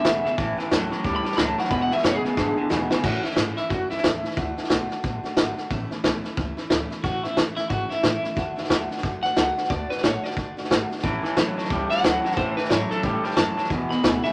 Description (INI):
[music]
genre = rockabilly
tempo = 180 BPM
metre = 4/4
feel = swing 61% on 8ths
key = A major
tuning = A4 = 442 Hz
[part]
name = electric guitar at the edge of break-up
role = melody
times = 0.0-4.9, 7.0-14.3 s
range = E4 to B5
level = -29 LUFS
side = equal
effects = tremolo
[part]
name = picked steel-string acoustic guitar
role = accompaniment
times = 0.0-14.3 s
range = E2 to F#4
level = -34 LUFS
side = equal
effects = none
[part]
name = electric guitar through a small old amp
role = riff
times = 0.0-3.0, 11.0-14.3 s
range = E2 to G3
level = -29 LUFS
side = equal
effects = none
[part]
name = vintage drum kit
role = drums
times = 0.0-14.3 s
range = crash cymbal, hi-hat, kick drum, snare drum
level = -27 LUFS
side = equal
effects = none
[part]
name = upright bass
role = bass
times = 0.1-14.3 s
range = F#1 to A2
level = -37 LUFS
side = equal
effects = none
[sound]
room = moderate small room reverb, RT60 0.6 s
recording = none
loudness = -24 LUFS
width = mono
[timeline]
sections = 0.0-3.0 A section; 3.0-14.3 B section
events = drum fill 2.4-3.0; clean electric guitar solo 3.0-14.3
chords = 0.4 A; 1.7 E; 3.0 A; 4.4 D; 5.7 A; 8.4 D; 11.0 A; 13.7 E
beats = 0.05 | 0.38 0.71 1.04 1.38 | 1.71 2.04 2.38 2.71 | 3.04 3.37 3.71 4.04 | 4.37 4.71 5.04 5.37 | 5.71 6.04 6.37 6.71 | 7.04 7.37 7.71 8.04 | 8.37 8.71 9.04 9.37 | 9.71 10.04 10.37 10.70 | 11.04 11.37 11.70 12.04 | 12.37 12.70 13.04 13.37 | 13.71 14.04